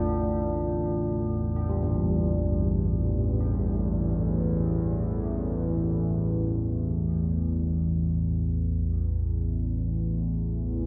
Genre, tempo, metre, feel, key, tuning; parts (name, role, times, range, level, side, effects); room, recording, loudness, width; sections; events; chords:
dark ambient drone; free time; A4 = 440 Hz
carillon bells; arpeggios; 0.0-9.2 s; G2 to D4; -34 LUFS; equal; delay
analog drone; drone; 0.0-10.9 s; A1 to E2; -28 LUFS; equal; chorus
wet cathedral reverb, RT60 6.4 s; -27 LUFS; mono
0.0-10.9 A section
0.0 A5